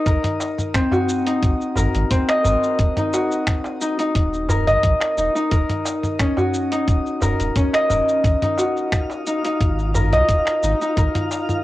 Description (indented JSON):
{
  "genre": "organic downtempo",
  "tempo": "88 BPM",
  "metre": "4/4",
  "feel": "swing 53% on 16ths",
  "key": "Eb dorian",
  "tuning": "A4 = 439 Hz",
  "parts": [
    { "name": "Celtic harp", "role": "arpeggios", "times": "0.0-11.6 s", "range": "C4 to Eb5", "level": "-19 LUFS", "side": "left 1 dB", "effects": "cassette tape, tape echo, shimmer reverb" },
    { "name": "warm sub bass", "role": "bass", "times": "0.1-11.1 s", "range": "Eb1 to C2", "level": "-23 LUFS", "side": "equal", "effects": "sidechain pumping" },
    { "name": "dusty soul sampler-style drum kit", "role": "drums", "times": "0.1-11.6 s", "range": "finger snaps, hi-hat, shaker, toms", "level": "-26 LUFS", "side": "equal", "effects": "cassette tape" },
    { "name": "electronic kick drum", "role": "drums", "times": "0.1-11.1 s", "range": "none", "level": "-19 LUFS", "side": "equal", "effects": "cassette tape" },
    { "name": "darbuka", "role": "percussion", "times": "0.2-11.5 s", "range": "none", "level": "-26 LUFS", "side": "equal", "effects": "none" },
    { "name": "twinkling granular texture", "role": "texture", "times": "8.6-11.6 s", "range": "F4 to F5", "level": "-31 LUFS", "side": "right 1 dB", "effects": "built-in reverb, cassette tape, shimmer reverb" }
  ],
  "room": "moderate small room reverb, RT60 0.5 s",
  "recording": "home recording on cassette",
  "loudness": "-17 LUFS",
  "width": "side -16 dB against mid",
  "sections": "0.0-11.6 A section",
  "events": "none",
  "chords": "0.0 Ab9; 2.8 Ebm7"
}